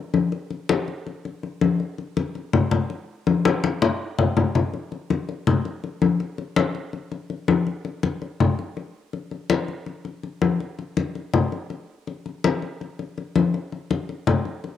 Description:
latin; 163 BPM; 4/4; straight
congas; percussion; 0.1-14.8 s; -22 LUFS; left 4 dB
moderate spring reverb, RT60 1.3 s, small room ambience; home recording on cassette; -21 LUFS; side -10 dB against mid
0.0-4.7 A section; 4.7-14.8 B section
drum fill 3.3-4.7

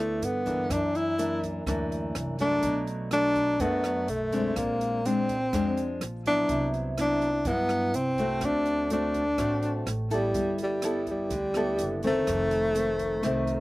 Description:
bossa nova; 124 BPM; 4/4; straight; G major; A4 = 440 Hz
breathy tenor saxophone; melody; 0.0-13.6 s; G3 to E4; -26 LUFS; equal
nylon-string guitar; accompaniment; 0.0-13.6 s; F2 to A4; -30 LUFS; left 1 dB
upright bass; bass; 0.0-13.6 s; F1 to G2; -35 LUFS; right 1 dB
open jazz drum kit; drums; 0.2-13.6 s; hi-hat, kick drum, rim click; -40 LUFS; right 1 dB
little or no reverb; recorded outdoors, with no room sound; -25 LUFS; side -18 dB against mid
0.0-13.6 A section
0.0 G69; 0.7 F#7b13; 2.6 Bm7; 4.6 Bb9; 6.5 Cmaj9#11; 8.4 D7; 10.4 G69; 12.3 F7

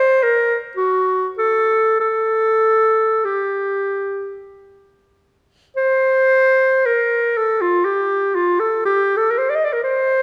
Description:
classical, free, expressive piece for unaccompanied clarinet; 38-64 BPM; 3/4; rubato; A4 = 442 Hz
warm clarinet; solo; 0.0-10.2 s; F4 to Eb5; -17 LUFS; equal
moderate concert hall reverb, RT60 1.8 s; -17 LUFS; mono
0.0-5.8 A section; 5.8-10.2 B section

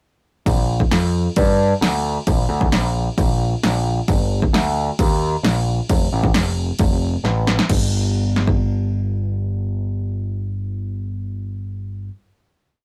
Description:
garage rock duo or trio; 133 BPM; 4/4; straight; A4 = 440 Hz
growling picked electric bass; bass; 0.5-12.1 s; F1 to G2; -22 LUFS; equal; overdrive
punchy analog drum machine; drums; 0.5-8.6 s; crash cymbal, kick drum, snare drum; -22 LUFS; equal; overdrive
moderate studio reverb, RT60 0.5 s; rough rehearsal-room recording, warm saturation; -20 LUFS; mono
0.5-7.7 pre-chorus; 7.7-11.2 final note
drum fill 7.2-7.7

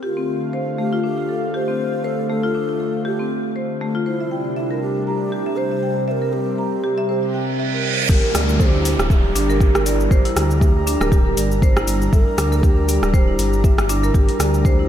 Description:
afro house; 119 BPM; 4/4; swing 56% on 16ths; G dorian; A4 = 440 Hz
breathy hollow bass bansuri; melody; 0.0-14.9 s; E4 to C5; -25 LUFS; equal; ping-pong delay
warm analog pad; sustained chords; 0.0-14.9 s; C3 to Bb5; -25 LUFS; equal; chorus, sidechain pumping
marimba with medium mallets; arpeggios; 0.0-14.9 s; A3 to Bb5; -24 LUFS; equal; sidechain pumping, ping-pong delay
reverse cymbal and downlifter; sound effects; 7.4-12.1 s; -26 LUFS; right 2 dB
dark detuned saw bass; bass; 8.1-14.9 s; D1 to D2; -20 LUFS; equal; tube saturation, sidechain pumping
afro-pop drum kit; drums; 8.1-14.8 s; crash cymbal, hi-hat, rim click, shaker; -25 LUFS; equal; studio reverb
electronic kick drum; drums; 8.1-14.8 s; -16 LUFS; equal; studio reverb
moderate cathedral reverb, RT60 5.3 s; dreamy mix soaked in reverb; -16 LUFS; side -10 dB against mid
0.0-8.1 A section; 8.1-14.9 B section
reverse cymbal 7.4-8.1; drop 8.1-14.9
0.0 Dm7; 4.1 C7; 8.1 Gm6

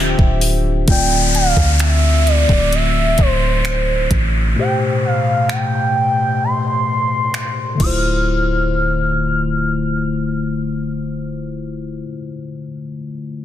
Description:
contemporary R&B; 65 BPM; 4/4; straight; D dorian; A4 = 440 Hz
gliding portamento lead; melody; 0.0-12.0 s; C5 to F6; -20 LUFS; right 1 dB; chorus, low-pass filter, ping-pong delay
mellow tine electric piano; accompaniment; 0.0-13.4 s; A2 to E5; -21 LUFS; left 4 dB; phaser, low-pass filter
chorused pulse-width pad; sustained chords; 0.0-0.9 s; F3 to E5; -27 LUFS; left 1 dB; sidechain pumping
soft 808-style bass; bass; 0.0-12.0 s; D1 to D2; -19 LUFS; equal
smooth R&B drum kit; drums; 0.2-8.0 s; crash cymbal, finger snaps, hi-hat, kick drum; -18 LUFS; equal; soft clipping on snare
downlifter; sound effects; 0.9-8.3 s; -22 LUFS; equal
light reverb; dense, heavily limited modern master; -14 LUFS; side -11 dB against mid
0.9-8.3 A section; 8.3-12.0 B section
filter sweep 0.9-8.3; break 4.6-8.3
0.0 Dm11; 0.9 Dm7; 4.6 Am7; 7.8 Dm9

